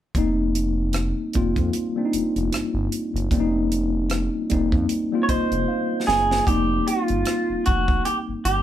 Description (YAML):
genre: R&B, neo-soul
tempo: 76 BPM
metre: 4/4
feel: swing 58% on 16ths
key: unclear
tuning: A4 = 440 Hz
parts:
  - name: tight funk drum kit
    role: drums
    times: 0.1-8.6 s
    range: hi-hat, kick drum, rim click, snare drum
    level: -25 LUFS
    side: equal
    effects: none
  - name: mellow tine electric piano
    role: accompaniment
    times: 0.2-8.6 s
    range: G3 to Bb5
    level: -23 LUFS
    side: left 1 dB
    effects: medium stereo tremolo
  - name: smooth gliding synth bass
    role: bass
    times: 0.2-8.6 s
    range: F1 to F2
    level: -26 LUFS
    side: equal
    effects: none
  - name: electric guitar through a small old amp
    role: melody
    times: 5.2-8.6 s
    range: F4 to Db5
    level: -22 LUFS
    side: right 2 dB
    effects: none
room: moderate studio reverb, RT60 0.6 s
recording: band playing live in one room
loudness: -20 LUFS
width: side -11 dB against mid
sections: 0.2-6.5 A section; 6.5-8.6 B section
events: tine electric piano fill 4.9-6.5; drum fill 5.7-6.5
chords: 0.2 F9sus4